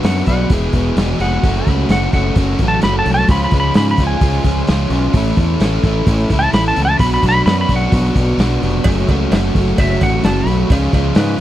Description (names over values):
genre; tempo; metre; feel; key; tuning
classic rock; 129 BPM; 4/4; straight; F# minor; A4 = 439 Hz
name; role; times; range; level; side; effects
clean lap steel guitar; melody; 0.0-11.4 s; B4 to B5; -19 LUFS; equal; none
picked twelve-string acoustic guitar; accompaniment; 0.0-11.4 s; F#2 to B4; -26 LUFS; right 2 dB; none
crunchy overdriven guitar; riff; 0.0-11.4 s; E2 to G#4; -18 LUFS; equal; none
growling fingered electric bass; bass; 0.0-11.3 s; E1 to G#2; -18 LUFS; equal; overdrive
vintage drum kit; drums; 0.0-11.3 s; hi-hat, kick drum, snare drum; -16 LUFS; equal; none
cowbell; percussion; 8.8-11.3 s; none; -28 LUFS; right 5 dB; none
room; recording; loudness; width
little or no reverb; dry, close 1970s-style studio recording; -12 LUFS; side -13 dB against mid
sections
0.0-11.4 A section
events
electric slide guitar solo 0.0-11.4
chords
0.0 Bm; 0.5 Eadd9; 1.4 F#m; 3.3 C#; 5.1 A; 7.0 Bm; 8.9 F#m; 10.7 C#